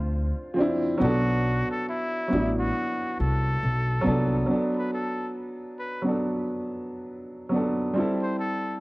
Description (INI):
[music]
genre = lo-fi hip hop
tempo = 69 BPM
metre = 4/4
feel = swing 60% on 16ths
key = B phrygian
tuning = A4 = 440 Hz
[part]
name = trumpet with straight mute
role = melody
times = 0.0-8.8 s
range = E4 to C5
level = -31 LUFS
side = left 1 dB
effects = low-pass filter
[part]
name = warm upright piano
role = accompaniment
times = 0.0-8.8 s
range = F3 to C5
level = -26 LUFS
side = equal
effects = cassette tape, low-pass filter
[part]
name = upright bass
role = bass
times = 0.0-4.4 s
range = A1 to D2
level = -26 LUFS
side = equal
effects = none
[sound]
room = moderate spring reverb, RT60 1.5 s, studio reverb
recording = worn, warbling old tape, cassette tape, warbly pitch drift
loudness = -24 LUFS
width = side -22 dB against mid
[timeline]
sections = 0.0-4.5 A section; 4.5-8.8 B section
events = none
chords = 0.0 Dm7; 1.0 Bm7; 8.0 Am7